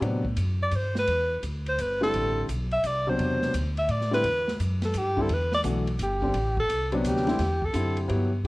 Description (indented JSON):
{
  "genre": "modal jazz",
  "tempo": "171 BPM",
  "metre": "3/4",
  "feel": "swing 65% on 8ths",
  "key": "A dorian",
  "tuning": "A4 = 439 Hz",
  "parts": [
    { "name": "warm upright piano", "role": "accompaniment", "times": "0.0-8.5 s", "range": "B2 to G4", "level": "-29 LUFS", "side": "left 1 dB", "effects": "none" },
    { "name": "upright bass", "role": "bass", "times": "0.0-8.5 s", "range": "G1 to A2", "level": "-28 LUFS", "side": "equal", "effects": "none" },
    { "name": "open jazz drum kit", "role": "drums", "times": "0.0-8.5 s", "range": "hi-hat, kick drum, ride cymbal, snare drum", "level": "-37 LUFS", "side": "right 1 dB", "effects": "none" },
    { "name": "breathy alto saxophone", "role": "melody", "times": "0.6-8.0 s", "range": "G4 to E5", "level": "-27 LUFS", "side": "equal", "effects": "none" }
  ],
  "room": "light reverb",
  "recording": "worn, warbling old tape, cassette tape, warbly pitch drift",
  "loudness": "-24 LUFS",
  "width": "side -20 dB against mid",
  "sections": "0.0-8.4 A section",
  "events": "alto saxophone solo 0.0-8.4",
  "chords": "0.0 Am11",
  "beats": "| 0.02 0.37 0.72 | 1.07 1.43 1.78 | 2.13 2.48 2.83 | 3.18 3.54 3.89 | 4.24 4.59 4.94 | 5.29 5.64 5.99 | 6.34 6.69 7.04 | 7.39 7.74 8.09 | 8.44"
}